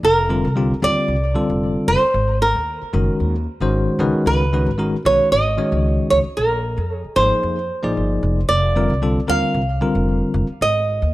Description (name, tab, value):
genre	electric jazz fusion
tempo	114 BPM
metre	4/4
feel	swing 53% on 16ths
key	unclear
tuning	A4 = 440 Hz
part	flamenco guitar	melody	0.0-11.1 s	Bb4 to F5	-19 LUFS	right 2 dB	none
part	upright bass	bass	0.0-11.1 s	F1 to F2	-21 LUFS	equal	none
part	bell-like tine electric piano	accompaniment	0.3-10.5 s	D3 to D5	-20 LUFS	left 2 dB	medium stereo tremolo
room	moderate large studio reverb, RT60 1.3 s, studio reverb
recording	none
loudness	-16 LUFS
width	side -17 dB against mid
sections	0.0-11.1 A section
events	none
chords	0.0 Fsus4; 2.1 Ab9sus4; 4.0 Db9sus4; 6.4 Bb9sus4; 8.5 Fsus4; 10.6 Ab5